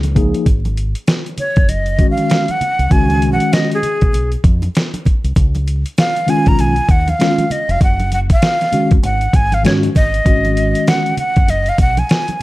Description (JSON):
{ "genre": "hip hop, jazz-hop", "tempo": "98 BPM", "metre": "4/4", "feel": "swing 61% on 16ths", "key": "G# dorian", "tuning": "A4 = 440 Hz", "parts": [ { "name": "deep dub fingered electric bass", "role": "bass", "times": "0.0-12.0 s", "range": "E#1 to G#2", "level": "-18 LUFS", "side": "equal", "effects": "none" }, { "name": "dusty soul sampler-style drum kit", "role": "drums", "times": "0.0-12.4 s", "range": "hi-hat, kick drum, snare drum", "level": "-14 LUFS", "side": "equal", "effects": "none" }, { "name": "congas and egg shaker", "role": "percussion", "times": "0.0-12.4 s", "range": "none", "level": "-28 LUFS", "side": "right 2 dB", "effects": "none" }, { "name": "mellow tine electric piano", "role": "accompaniment", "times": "0.1-11.1 s", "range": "D#3 to G#4", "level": "-18 LUFS", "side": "left 1 dB", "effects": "medium stereo tremolo" }, { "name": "breathy jazz flute", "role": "melody", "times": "1.4-12.4 s", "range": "G#4 to A#5", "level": "-18 LUFS", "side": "equal", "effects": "none" } ], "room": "light reverb, digital ambience", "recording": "dark, warm production, vinyl crackle", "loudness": "-12 LUFS", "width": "side -18 dB against mid", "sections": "0.5-10.3 A section; 10.3-12.4 B section", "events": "flute solo 0.5-10.3", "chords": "0.5 G#5; 2.9 C#9sus4; 5.4 C#9; 7.8 F#sus2; 9.0 G#5; 10.3 G#7(no3)" }